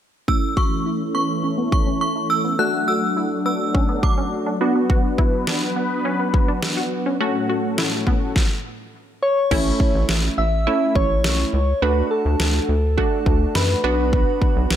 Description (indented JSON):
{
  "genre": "synth-pop",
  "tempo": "104 BPM",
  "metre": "4/4",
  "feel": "straight",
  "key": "A major",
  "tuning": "A4 = 440 Hz",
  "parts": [
    { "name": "synth chime", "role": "second line", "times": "0.3-4.1 s", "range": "C#6 to F#6", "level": "-24 LUFS", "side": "equal", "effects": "ensemble chorus, ping-pong delay" },
    { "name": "funky polysynth comp", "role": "accompaniment", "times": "0.3-14.8 s", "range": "A3 to F#4", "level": "-24 LUFS", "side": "right 1 dB", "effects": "chorus, low-pass filter" },
    { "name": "sweeping resonant pad", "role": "sustained chords", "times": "0.3-8.3 s", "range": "A2 to B4", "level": "-26 LUFS", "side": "equal", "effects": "chorus, low-pass filter" },
    { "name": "wide unison pluck", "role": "arpeggios", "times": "0.3-8.2 s", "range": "B3 to A4", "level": "-28 LUFS", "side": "left 1 dB", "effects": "low-pass filter, ping-pong delay" },
    { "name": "pop drum kit", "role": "drums", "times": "0.3-14.8 s", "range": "crash cymbal, kick drum, snare drum", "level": "-21 LUFS", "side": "equal", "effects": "none" },
    { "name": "soft struck synth lead", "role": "melody", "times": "9.2-14.8 s", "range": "A4 to E5", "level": "-22 LUFS", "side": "left 1 dB", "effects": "chorus, ping-pong delay" },
    { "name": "rubbery square bass", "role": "bass", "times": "9.5-14.8 s", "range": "A1 to F#2", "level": "-20 LUFS", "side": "equal", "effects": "none" }
  ],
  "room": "light reverb",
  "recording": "none",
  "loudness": "-18 LUFS",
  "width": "side -10 dB against mid",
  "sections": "0.3-9.5 A section; 9.5-14.8 B section",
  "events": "filter sweep 0.3-9.5",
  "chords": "0.3 A; 2.6 D; 4.6 Bm; 7.2 F#m/A; 9.5 A; 11.8 D; 13.8 Bm"
}